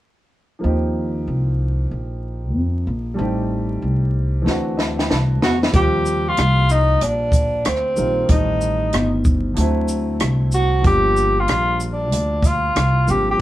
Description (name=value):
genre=hip hop, jazz-hop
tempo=94 BPM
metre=4/4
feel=swing 65% on 16ths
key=Eb major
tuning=A4 = 440 Hz
part: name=warm upright piano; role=accompaniment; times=0.6-13.4 s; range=D3 to A5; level=-25 LUFS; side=equal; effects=none
part: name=upright bass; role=bass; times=0.6-13.4 s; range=G1 to F2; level=-20 LUFS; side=equal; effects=none
part: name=compact cocktail drum kit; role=drums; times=4.5-13.3 s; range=hi-hat, kick drum, rim click, shaker, snare drum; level=-19 LUFS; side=equal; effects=none
part: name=breathy tenor saxophone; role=melody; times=5.4-13.4 s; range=C4 to G4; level=-19 LUFS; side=equal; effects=none
room=moderate studio reverb, RT60 0.6 s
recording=band playing live in one room, vinyl crackle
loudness=-16 LUFS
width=side -14 dB against mid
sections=0.6-5.7 A section; 5.7-13.4 B section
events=upright piano fill 4.5-5.7; drum fill 4.5-5.7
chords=0.6 Eb69; 3.2 Am7b5; 4.5 D7; 5.7 Eb69; 8.3 Am7b5; 9.6 D7; 10.8 Gm7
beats=| 0.63 1.27 1.91 2.55 | 3.19 3.82 4.46 5.10 | 5.74 6.38 7.01 7.65 | 8.29 8.93 9.57 10.21 | 10.85 11.48 12.12 12.76 | 13.40